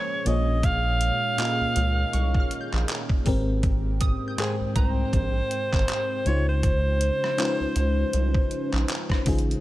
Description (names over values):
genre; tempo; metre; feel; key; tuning
contemporary R&B; 80 BPM; 4/4; swing 58% on 16ths; unclear; A4 = 442 Hz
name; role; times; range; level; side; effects
warm alto saxophone; melody; 0.0-8.8 s; Ab4 to F5; -28 LUFS; right 1 dB; digital delay
FM electric piano with soft pad layer; accompaniment; 0.0-9.6 s; Ab2 to G5; -29 LUFS; left 2 dB; chorus, tremolo
deep dark ambient pad; sustained chords; 0.0-9.6 s; Eb3 to G5; -35 LUFS; right 4 dB; chorus, built-in reverb
rubbery square bass; bass; 0.3-9.5 s; Ab1 to Db2; -25 LUFS; equal; none
detuned 8-bit digital drum machine; drums; 0.3-9.6 s; handclaps, hi-hat, kick drum, rim click; -26 LUFS; equal; none
glassy wavetable pluck; texture; 2.1-6.4 s; Bb5 to G6; -38 LUFS; right 4 dB; chorus, digital delay
room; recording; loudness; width
little or no reverb; none; -22 LUFS; side -16 dB against mid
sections
0.0-9.6 A section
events
none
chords
0.3 Eb7sus4/Bb; 3.3 Abmaj7; 6.3 Dbmaj9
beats
| 0.63 1.38 2.13 2.88 | 3.63 4.38 5.13 5.88 | 6.63 7.38 8.13 8.88